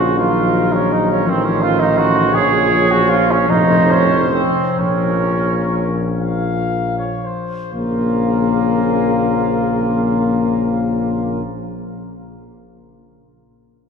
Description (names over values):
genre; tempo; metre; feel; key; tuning
classical, hymn-like piece for brass band; 38-58 BPM (dotted quarters); 6/8; rubato; Bb minor; A4 = 440 Hz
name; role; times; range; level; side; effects
warm trumpet section; melody; 0.0-11.4 s; F4 to F5; -24 LUFS; left 3 dB; none
warm flugelhorn; second line; 0.0-11.4 s; Bb3 to Ab4; -18 LUFS; right 4 dB; none
bright trombone; accompaniment; 0.0-11.4 s; A2 to Eb3; -25 LUFS; right 1 dB; none
dark euphonium; accompaniment; 0.0-11.4 s; F3 to Bb3; -21 LUFS; left 4 dB; none
warm tuba; bass; 0.0-11.4 s; F1 to Bb1; -20 LUFS; left 1 dB; none
room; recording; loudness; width
wet church reverb, RT60 3.8 s; heard from further back in the room, nothing above 11.0 kHz; -14 LUFS; side -6 dB against mid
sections
0.0-7.7 A section; 7.7-10.7 B section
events
slowing down 1.3-7.7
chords
0.2 Ebm9/Bb; 1.3 F7/A; 2.3 Bbm; 3.5 F; 4.8 Bbm